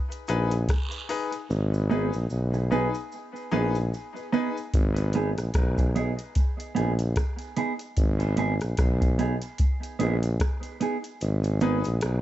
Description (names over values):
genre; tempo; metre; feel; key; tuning
dub reggae; 74 BPM; 4/4; swing 58% on 16ths; G# minor; A4 = 440 Hz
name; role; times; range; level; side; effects
soft vintage rhythm box; drums; 0.1-12.2 s; hi-hat, kick drum, rim click; -25 LUFS; equal; none
cabasa and guiro; percussion; 0.1-12.2 s; none; -48 LUFS; right 5 dB; dub echo
clear concert grand piano; stabs; 0.3-4.6, 11.6-11.8 s; D#4 to B4; -33 LUFS; left 5 dB; dub echo
clear tuba; bass; 0.3-12.2 s; G#1 to B1; -25 LUFS; equal; none
mellow electric guitar; accompaniment; 1.9-11.8 s; B3 to G#4; -30 LUFS; right 4 dB; phaser, dub echo
room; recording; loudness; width
light reverb; dark, warm production, nothing above 7.9 kHz; -24 LUFS; side -14 dB against mid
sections
0.0-12.2 A section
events
break 0.0-1.5; part muted 1.5-4.7; kick muted 11.2-12.2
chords
0.0 G#m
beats
0.69 | 1.50 2.31 3.12 3.93 | 4.74 5.55 6.36 7.17 | 7.97 8.79 9.59 10.40 | 11.21 12.02